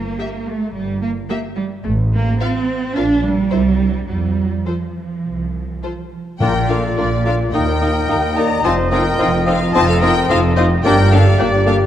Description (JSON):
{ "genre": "quick classical-period movement for symphony orchestra", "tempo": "108 BPM", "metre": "4/4", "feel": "rubato", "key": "F major, Bb major from 6.4 s", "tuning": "A4 = 436 Hz", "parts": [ { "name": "rich studio cello section", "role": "bass", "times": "0.0-11.9 s", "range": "Eb2 to D4", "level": "-20 LUFS", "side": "right 2 dB", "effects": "none" }, { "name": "rich studio double bass section", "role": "bass", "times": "0.0-11.9 s", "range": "F1 to F2", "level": "-20 LUFS", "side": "right 1 dB", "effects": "none" }, { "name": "warm studio violin section", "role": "melody", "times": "0.2-11.7 s", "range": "D4 to F5", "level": "-27 LUFS", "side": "left 5 dB", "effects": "none" }, { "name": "warm studio violin section", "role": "second line", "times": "0.2-11.8 s", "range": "A4 to Bb5", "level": "-22 LUFS", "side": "left 3 dB", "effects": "none" }, { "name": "warm studio viola section", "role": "accompaniment", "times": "0.2-11.7 s", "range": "Bb3 to G4", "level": "-25 LUFS", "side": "equal", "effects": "none" }, { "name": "clear oboe", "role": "second line", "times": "6.4-11.8 s", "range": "D5 to Eb5", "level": "-26 LUFS", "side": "left 1 dB", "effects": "none" }, { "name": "concert flute", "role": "second line", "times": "6.4-11.7 s", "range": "F4 to D5", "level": "-23 LUFS", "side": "left 3 dB", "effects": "none" }, { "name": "warm clarinet", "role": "second line", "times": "6.4-11.8 s", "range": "Eb4 to G4", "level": "-26 LUFS", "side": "left 2 dB", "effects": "none" }, { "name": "warm bassoon", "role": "accompaniment", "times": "6.4-11.8 s", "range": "Bb3 to C4", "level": "-25 LUFS", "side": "left 1 dB", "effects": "none" }, { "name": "dark French horn section", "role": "sustained chords", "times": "6.4-11.9 s", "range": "Bb3 to G4", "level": "-24 LUFS", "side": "left 4 dB", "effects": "none" }, { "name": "clear trumpet", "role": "stabs", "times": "6.4-11.9 s", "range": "D5 to Eb5", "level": "-24 LUFS", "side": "right 2 dB", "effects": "none" }, { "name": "timpani", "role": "percussion", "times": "6.4-7.2 s", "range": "Bb2", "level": "-23 LUFS", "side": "left 3 dB", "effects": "none" } ], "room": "moderate concert hall reverb, RT60 2.2 s", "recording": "dark, warm production", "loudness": "-14 LUFS", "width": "side -11 dB against mid", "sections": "0.0-6.4 A section; 6.4-11.9 B section", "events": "none", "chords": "0.0 Edim/G (rootless); 1.9 F/A (rootless); 3.0 Bb; 3.5 C; 4.1 F5; 6.4 Bb; 7.5 Eb; 8.6 F5; 10.8 Gm", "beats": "0.19 0.75 1.30 | 1.85 2.40 2.96 3.51 | 4.09 4.67 5.25 5.83 | 6.41 6.97 7.54 8.10 | 8.65 9.20 9.75 10.29 | 10.84 11.39" }